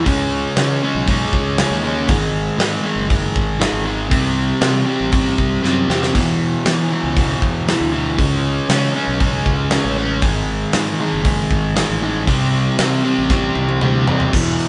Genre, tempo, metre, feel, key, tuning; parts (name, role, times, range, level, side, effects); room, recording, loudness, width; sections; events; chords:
quiet-loud alternative rock; 118 BPM; 4/4; straight; A4 = 440 Hz
overdriven semi-hollow guitar; riff; 0.0-14.7 s; E2 to C#4; -20 LUFS; equal
fuzz fingered electric bass; bass; 0.0-14.7 s; F#1 to E3; -25 LUFS; equal; overdrive
big rock drum kit; drums; 0.1-14.7 s; crash cymbal, hi-hat, kick drum, snare drum, splash cymbal, toms; -22 LUFS; equal
moderate stone room reverb, RT60 1.2 s; band playing live in one room, nothing above 10.3 kHz; -17 LUFS; mono
0.0-14.3 A section
drum fill 5.6-6.1, 13.3-14.3
0.1 C#5; 2.1 G#5; 4.1 C; 6.1 E5; 8.2 C#5; 10.2 G#5; 12.3 C5